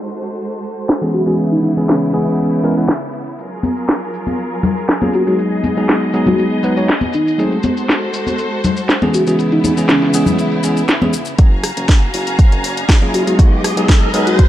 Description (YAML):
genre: nu-disco, nu disco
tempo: 120 BPM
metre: 4/4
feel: straight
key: F# major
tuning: A4 = 444 Hz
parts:
  - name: clear symphonic string section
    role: sustained chords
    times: 0.0-14.5 s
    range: C#3 to A#5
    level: -23 LUFS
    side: equal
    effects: sidechain pumping
  - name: house drum kit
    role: drums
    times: 0.1-14.5 s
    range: hi-hat, rim click, shaker, snare drum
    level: -18 LUFS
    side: equal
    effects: overdrive, low-pass filter on hats, low-pass filter on perc, low-pass filter on snare
  - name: bell-like tine electric piano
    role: accompaniment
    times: 1.0-14.5 s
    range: E3 to C#5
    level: -16 LUFS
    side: equal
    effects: sidechain pumping, low-pass filter
  - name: soft octave-layered synth lead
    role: melody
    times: 1.1-14.4 s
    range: C#4 to F#4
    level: -20 LUFS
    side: left 1 dB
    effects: chorus, tremolo, tape echo
  - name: maracas and congas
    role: percussion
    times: 3.4-11.4 s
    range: none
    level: -20 LUFS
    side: left 2 dB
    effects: none
  - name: fat analog bass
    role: bass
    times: 11.4-14.5 s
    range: F#1 to C#2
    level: -26 LUFS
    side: equal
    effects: high-pass filter
  - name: electronic kick drum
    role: drums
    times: 11.4-14.5 s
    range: none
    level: -10 LUFS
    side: equal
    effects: overdrive
  - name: riser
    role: sound effects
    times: 12.3-14.5 s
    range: none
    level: -23 LUFS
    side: equal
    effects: none
room: light reverb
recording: low-pass filter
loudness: -13 LUFS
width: side -13 dB against mid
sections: 0.0-11.4 A section; 11.4-14.5 B section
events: filter sweep 0.0-11.4; build-up 11.4-14.5; riser 12.3-14.5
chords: 0.0 G#7b9; 1.1 C#m7; 3.4 F#maj9; 5.4 B6; 7.4 G#7b9; 9.1 C#m7; 11.4 F#maj9; 13.4 B6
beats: 0.39 0.89 | 1.39 1.89 2.39 2.89 | 3.39 3.89 4.39 4.89 | 5.39 5.89 6.39 6.89 | 7.39 7.89 8.39 8.89 | 9.39 9.89 10.39 10.89 | 11.39 11.89 12.39 12.89 | 13.39 13.89 14.39